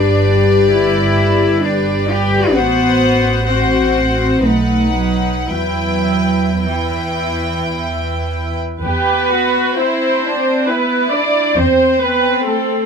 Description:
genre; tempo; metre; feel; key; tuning
classical, slow romantic movement for string orchestra; 52-71 BPM; 3/4; rubato; E minor; A4 = 442 Hz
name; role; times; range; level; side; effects
clear studio violin section; melody; 0.0-12.9 s; D5 to A5; -22 LUFS; left 1 dB; none
warm studio violin section; second line; 0.0-12.9 s; C4 to C5; -21 LUFS; left 2 dB; none
dark symphonic viola section; accompaniment; 0.0-12.9 s; D#4 to D5; -17 LUFS; left 1 dB; none
dark symphonic double bass section; bass; 0.0-12.3 s; G1 to E2; -19 LUFS; right 2 dB; none
warm symphonic cello section; bass; 0.0-12.9 s; E3 to G4; -19 LUFS; equal; none
room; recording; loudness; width
light reverb; minimal, uncompressed stereo recording; -13 LUFS; side -6 dB against mid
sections
0.0-8.8 A section; 8.8-12.9 A section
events
none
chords
0.0 G; 2.5 F#dim/A; 4.4 B7; 5.5 Em; 11.6 Am/E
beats
0.75 1.65 | 2.54 3.47 4.43 | 5.50 6.65 7.75 | 8.83 9.79 10.68 | 11.57 12.46

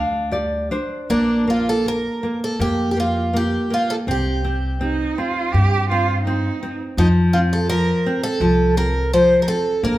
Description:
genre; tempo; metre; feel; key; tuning
fado-style ballad; 82 BPM; 4/4; rubato; unclear; A4 = 440 Hz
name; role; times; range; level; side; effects
picked twelve-string acoustic guitar; melody; 0.0-10.0 s; D4 to C5; -20 LUFS; equal; none
nylon-string guitar; accompaniment; 0.0-10.0 s; F3 to F5; -21 LUFS; equal; none
upright bass; bass; 0.0-10.0 s; Bb1 to G2; -22 LUFS; equal; none
warm cello; second line; 4.8-6.7 s; Eb4 to G4; -22 LUFS; right 4 dB; none
room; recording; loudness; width
wet large studio reverb, RT60 1.4 s; band playing live in one room; -17 LUFS; side -15 dB against mid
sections
0.0-1.1 A section; 1.1-10.0 B section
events
nylon-string guitar fill 0.0-1.1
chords
0.0 G5; 1.1 Bb5; 4.1 C5; 7.0 F5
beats
0.32 | 1.09 1.85 2.59 3.33 | 4.07 4.81 5.54 6.26 | 6.97 7.69 8.41 9.12 | 9.83

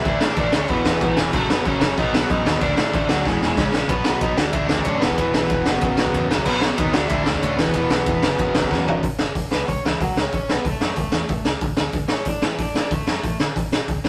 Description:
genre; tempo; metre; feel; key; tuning
punk rock; 187 BPM; 4/4; straight; F# minor; A4 = 440 Hz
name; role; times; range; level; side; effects
overdriven electric guitar; melody; 0.0-13.4 s; E3 to F#5; -28 LUFS; equal; none
distorted electric guitar; riff; 0.0-9.0 s; E2 to D4; -31 LUFS; equal; none
overdriven electric guitar; riff; 0.0-9.0 s; E2 to D4; -27 LUFS; equal; none
fretless electric bass; bass; 0.0-14.1 s; E1 to D3; -32 LUFS; equal; none
raw garage drum kit; drums; 0.1-14.1 s; crash cymbal, hi-hat, kick drum, ride cymbal, snare drum, toms; -23 LUFS; equal; none
room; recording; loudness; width
light reverb; rough rehearsal-room recording, tube saturation; -21 LUFS; mono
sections
0.0-3.9 A section; 3.9-9.0 B section; 9.0-14.1 C section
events
drum fill 3.3-3.9, 8.7-9.0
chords
0.0 D5; 0.7 E5; 1.3 F#m; 2.0 B; 2.6 D; 3.3 E; 3.6 C#5; 3.9 B; 4.4 D; 5.0 E5; 5.7 F#5; 6.5 B; 6.9 D; 7.6 E5; 8.2 F#5; 9.0 F#m; 11.6 D5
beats
| 0.05 0.37 0.69 1.01 | 1.33 1.65 1.97 2.29 | 2.61 2.93 3.25 3.58 | 3.90 4.22 4.54 4.86 | 5.18 5.50 5.82 6.14 | 6.46 6.78 7.10 7.42 | 7.75 8.07 8.39 8.71 | 9.03 9.36 9.68 10.00 | 10.32 10.65 10.97 11.29 | 11.62 11.94 12.26 12.59 | 12.91 13.23 13.56 13.88

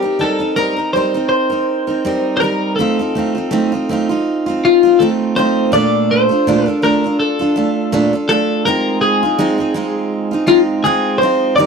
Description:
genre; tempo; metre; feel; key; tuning
pop; 82 BPM; 4/4; swing 55% on 16ths; Bb major; A4 = 440 Hz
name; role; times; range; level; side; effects
twelve-string electric guitar; melody; 0.0-11.7 s; F4 to D5; -15 LUFS; left 3 dB; none
picked steel-string acoustic guitar; accompaniment; 0.0-11.7 s; Bb2 to Bb4; -16 LUFS; right 3 dB; none
room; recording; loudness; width
studio ambience; dry, close 1970s-style studio recording; -13 LUFS; side -5 dB against mid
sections
0.0-5.7 A section; 5.7-11.7 B section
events
none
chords
0.0 Cm7/G; 2.8 F7/A; 5.7 Bbmaj7; 8.7 Ab6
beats
0.58 1.32 2.06 | 2.79 3.52 4.26 4.99 | 5.73 6.46 7.19 7.93 | 8.66 9.39 10.13 10.86 | 11.59

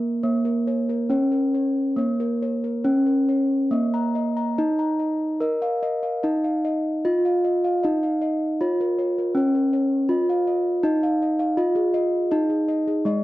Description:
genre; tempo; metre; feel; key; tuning
gamelan; 69-81 BPM; 4/4; straight; Bb slendro; A4 = 444 Hz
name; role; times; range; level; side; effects
gamelan-type bronze metallophone; melody; 0.0-13.2 s; Ab3-25c to Bb4; -21 LUFS; equal; slapback echo
gamelan-type bossed gongs; arpeggios; 0.0-13.2 s; Ab4-25c to Bb5; -29 LUFS; left 4 dB; none
room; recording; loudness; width
moderate booth ambience, RT60 0.3 s; dry, close 1970s-style studio recording; -20 LUFS; side -16 dB against mid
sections
0.0-10.1 A section; 10.1-13.2 B section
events
none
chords
none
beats
| 0.24 1.11 1.98 2.85 | 3.71 4.57 5.42 6.24 | 7.04 7.83 8.61 9.37 | 10.11 10.85 11.59 12.32 | 13.06

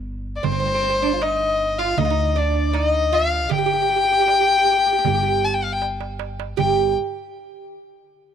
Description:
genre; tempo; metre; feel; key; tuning
Arabic maqam ensemble; 78 BPM; 4/4; straight; G maqam bayati; A4 = 441 Hz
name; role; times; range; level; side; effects
upright bass; bass; 0.0-6.9 s; G1 to D2; -26 LUFS; equal; none
dark violin; melody; 0.4-6.9 s; C5 to Ab5+46c; -19 LUFS; left 4 dB; none
oud; second line; 0.4-6.9 s; C4 to G4; -25 LUFS; right 13 dB; none
darbuka; percussion; 0.4-6.9 s; none; -27 LUFS; right 13 dB; none
room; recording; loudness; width
little or no reverb; 1960s-style stereo; -17 LUFS; side -8 dB against mid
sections
0.0-6.6 A section; 6.6-8.3 B section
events
drum fill 5.8-6.6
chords
none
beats
| 0.44 1.21 1.98 2.75 | 3.51 4.28 5.05 5.82 | 6.58

